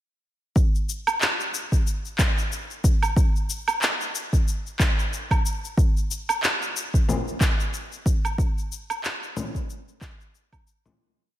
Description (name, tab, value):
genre	downtempo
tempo	92 BPM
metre	4/4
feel	swing 57% on 16ths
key	none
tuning	none
part	electronic cabasa, woodblock and handclaps	drums	0.6-11.0 s	none	-26 LUFS	right 1 dB	none
part	electronic kick drum	drums	0.6-10.6 s	none	-21 LUFS	equal	overdrive
part	frame drum	percussion	7.1-11.0 s	none	-30 LUFS	left 3 dB	none
room	light reverb, digital ambience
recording	none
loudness	-22 LUFS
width	side -13 dB against mid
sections	0.6-11.0 groove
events	fade-out 7.5-11.0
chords	none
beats	| 0.56 1.21 1.86 2.52 | 3.17 3.82 4.47 5.13 | 5.78 6.43 7.08 7.74 | 8.39 9.04 9.69 10.34